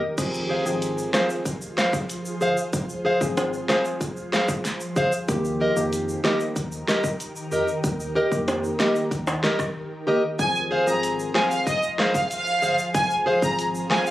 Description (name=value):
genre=dancehall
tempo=94 BPM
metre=4/4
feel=straight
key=F minor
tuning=A4 = 441 Hz
part: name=ethereal airy pad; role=sustained chords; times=0.0-14.1 s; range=Eb3 to C5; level=-33 LUFS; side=equal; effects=ensemble chorus, built-in reverb, phaser, sidechain pumping
part: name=percussive organ stab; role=accompaniment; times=0.2-14.1 s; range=Eb3 to Ab4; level=-26 LUFS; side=equal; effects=chorus, sidechain pumping
part: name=sub bass with octave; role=bass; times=0.2-13.8 s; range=F1 to F2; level=-37 LUFS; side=equal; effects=none
part: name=pop drum kit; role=drums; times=0.2-14.1 s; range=crash cymbal, hi-hat, kick drum, rim click, snare drum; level=-26 LUFS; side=equal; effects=vintage 12-bit sampler grit
part: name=egg shaker and timbales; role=percussion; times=0.2-14.1 s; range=none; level=-33 LUFS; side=equal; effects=none
part: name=fingerpicked plugged-in steel-string acoustic guitar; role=arpeggios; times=0.5-14.1 s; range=G4 to F5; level=-24 LUFS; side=equal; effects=none
part: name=rich studio violin section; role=melody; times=10.4-14.1 s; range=Eb5 to Bb5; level=-23 LUFS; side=equal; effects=tape echo
room=light reverb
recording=recorded on a phone in the room, club reverb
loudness=-21 LUFS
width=side -14 dB against mid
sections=0.2-10.4 A section; 10.4-14.1 B section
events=none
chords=0.2 Fm; 5.3 Eb; 10.4 Fm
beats=| 0.18 0.82 1.46 2.09 | 2.73 3.37 4.01 4.65 | 5.29 5.92 6.56 7.20 | 7.84 8.48 9.12 9.75 | 10.39 11.03 11.67 12.31 | 12.95 13.58